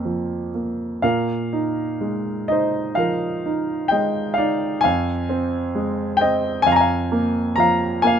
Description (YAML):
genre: classical, lyrical solo piano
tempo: 61-67 BPM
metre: 4/4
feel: rubato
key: unclear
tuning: A4 = 440 Hz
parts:
  - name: warm grand piano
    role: solo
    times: 0.0-8.2 s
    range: F2 to Bb5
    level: -18 LUFS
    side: equal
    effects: none
room: light reverb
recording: close, detailed microphones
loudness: -19 LUFS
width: side -8 dB against mid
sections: 0.0-8.2 A section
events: none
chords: 0.0 Fsus4; 1.0 Bb7sus4; 4.8 Fm7; 6.7 Fmadd11